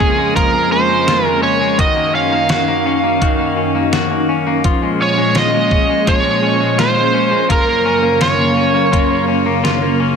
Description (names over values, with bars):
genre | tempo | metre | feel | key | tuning
dream pop | 84 BPM | 4/4 | straight | Bb minor | A4 = 441 Hz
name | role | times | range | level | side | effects
overdriven slide guitar | melody | 0.0-9.2 s | Ab4 to F5 | -16 LUFS | right 3 dB | tape echo
string machine, violins | sustained chords | 0.0-10.2 s | F2 to Db4 | -18 LUFS | equal | ensemble chorus
semi-hollow electric guitar | arpeggios | 0.0-10.2 s | Eb3 to Gb4 | -18 LUFS | left 4 dB | lush chorus, tape echo
detuned 8-bit digital drum machine | drums | 0.0-9.8 s | hi-hat, kick drum, snare drum | -18 LUFS | equal | none
room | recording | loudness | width
moderate huge ambient reverb, RT60 5.8 s | none | -12 LUFS | side -6 dB against mid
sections
0.0-10.2 A section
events
none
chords
0.0 Bbm7/F; 1.8 Ebm7/Gb; 4.6 Bbm7; 7.5 Gbmaj7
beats
0.36 1.07 | 1.79 2.50 3.21 3.93 | 4.64 5.36 6.07 6.79 | 7.50 8.21 8.93 9.64